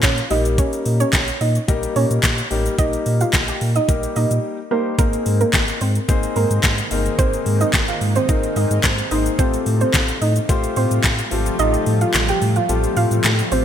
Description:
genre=dance-pop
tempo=109 BPM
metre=4/4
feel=straight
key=unclear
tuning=A4 = 439 Hz
part: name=soft round pluck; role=melody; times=0.0-13.6 s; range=Bb3 to G5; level=-23 LUFS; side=right 3 dB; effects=chorus, sidechain pumping, digital delay
part: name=clear concert grand piano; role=accompaniment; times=0.0-13.6 s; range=F3 to C5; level=-25 LUFS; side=left 6 dB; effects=sidechain pumping
part: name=sub bass with octave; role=bass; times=0.0-13.6 s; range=G1 to Bb2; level=-21 LUFS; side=equal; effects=sidechain pumping
part: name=pop drum kit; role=drums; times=0.0-13.6 s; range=handclaps, hi-hat, kick drum, shaker, snare drum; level=-20 LUFS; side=equal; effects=gated reverb
part: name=group handclap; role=percussion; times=0.0-13.4 s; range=none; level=barely audible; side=none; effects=none
part: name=granular cloud pad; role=sustained chords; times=6.1-13.6 s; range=C3 to F4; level=-28 LUFS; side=equal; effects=built-in reverb, analog chorus, sidechain pumping
room=light reverb, digital ambience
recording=bright 1980s-style digital production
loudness=-16 LUFS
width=side -9 dB against mid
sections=0.0-13.6 A section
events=break 4.4-5.0; kick muted 11.6-13.6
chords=0.3 Eb; 5.0 Abadd9; 9.4 Fadd9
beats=0.03 | 0.58 1.13 1.68 2.23 | 2.78 3.33 3.88 4.44 | 4.99 5.54 6.09 6.64 | 7.19 7.74 8.29 8.84 | 9.39 9.94 10.49 11.04 | 11.59 12.14 12.69 13.24

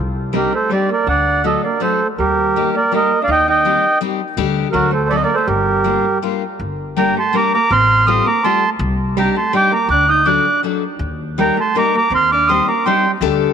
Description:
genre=musette waltz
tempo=164 BPM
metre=3/4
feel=rubato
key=G minor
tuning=A4 = 435 Hz
part: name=upright bass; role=bass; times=0.0-13.4 s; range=G1 to Eb2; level=-22 LUFS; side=left 1 dB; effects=none
part: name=hollow-body jazz guitar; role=second line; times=0.3-13.1 s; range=F#3 to Eb4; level=-24 LUFS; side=right 9 dB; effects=none
part: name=picked steel-string acoustic guitar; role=accompaniment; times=0.3-13.5 s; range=F#3 to C5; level=-22 LUFS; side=left 13 dB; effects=none
part: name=mellow accordion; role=melody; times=0.4-13.1 s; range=F#4 to G6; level=-15 LUFS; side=right 2 dB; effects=none
room=moderate plate reverb, RT60 3.5 s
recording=1960s-style stereo with parts hard left and right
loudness=-13 LUFS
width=side -7 dB against mid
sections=0.0-6.6 A section; 6.6-13.5 A section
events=none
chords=0.0 Cmadd9; 1.1 D; 2.2 Eb; 3.3 Cm/Eb; 4.4 Dsus4; 4.7 D; 5.5 Gm7; 6.6 Gm; 7.7 Fadd9/A; 8.8 Cmadd9; 9.9 D; 11.0 Eb; 12.1 Cm/Eb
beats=0.34 0.70 | 1.07 1.43 1.80 | 2.18 2.55 2.92 | 3.28 3.65 4.01 | 4.38 4.74 5.11 | 5.48 5.85 6.23 | 6.61 6.98 7.35 | 7.71 8.08 8.45 | 8.81 9.17 9.53 | 9.89 10.26 10.63 | 11.01 11.38 11.75 | 12.12 12.49 12.86 | 13.22

